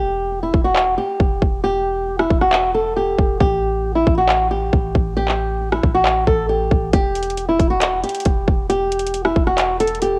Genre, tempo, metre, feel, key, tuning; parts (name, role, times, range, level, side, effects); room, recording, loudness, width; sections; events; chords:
hip hop, trap; 136 BPM; 4/4; half-time; E minor; A4 = 441 Hz
flamenco guitar; melody; 0.0-10.2 s; E4 to A4; -21 LUFS; equal; cassette tape
warm 808-style bass; bass; 0.0-10.2 s; D1 to A1; -28 LUFS; equal
trap drum kit; drums; 0.5-10.1 s; handclaps, hi-hat, kick drum, rim click; -21 LUFS; equal; cassette tape
light reverb, digital ambience; home recording on cassette; -18 LUFS; mono
0.0-10.2 A section
break 0.0-6.9
0.0 Em; 3.4 Emadd11/A (rootless); 6.9 Em